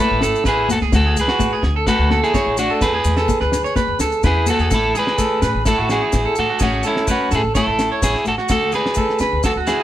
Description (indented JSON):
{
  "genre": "highlife guitar band",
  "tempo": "127 BPM",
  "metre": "4/4",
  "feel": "straight",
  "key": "A major",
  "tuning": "A4 = 440 Hz",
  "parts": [
    { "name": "electric guitar at the edge of break-up", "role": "melody", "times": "0.0-9.8 s", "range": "C#4 to B4", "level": "-20 LUFS", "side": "equal", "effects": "none" },
    { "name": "flamenco guitar", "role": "accompaniment", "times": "0.0-9.8 s", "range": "G#3 to D4", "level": "-27 LUFS", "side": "left 4 dB", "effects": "none" },
    { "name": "electric guitar at the edge of break-up", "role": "arpeggios", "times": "0.0-9.8 s", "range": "F#4 to C#5", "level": "-21 LUFS", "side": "right 2 dB", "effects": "none" },
    { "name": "upright bass", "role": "bass", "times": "0.1-9.8 s", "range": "G#1 to D3", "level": "-22 LUFS", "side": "equal", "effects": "none" },
    { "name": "cloth-damped thuddy drum kit", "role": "drums", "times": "0.2-9.8 s", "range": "kick drum, snare drum", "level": "-23 LUFS", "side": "equal", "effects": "none" },
    { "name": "maracas", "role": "percussion", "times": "0.2-9.8 s", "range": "none", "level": "-31 LUFS", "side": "left 3 dB", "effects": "none" },
    { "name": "congas", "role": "percussion", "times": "0.5-4.6 s", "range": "none", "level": "-27 LUFS", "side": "left 3 dB", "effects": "none" }
  ],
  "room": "moderate stone room reverb, RT60 1.0 s",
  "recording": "band playing live in one room",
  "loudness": "-15 LUFS",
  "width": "side -12 dB against mid",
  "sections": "0.0-4.7 A section; 4.7-9.8 B section",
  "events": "none",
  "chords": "0.0 Amaj7; 0.9 Dmaj7; 2.8 E7; 4.7 Amaj7; 8.5 Dmaj7"
}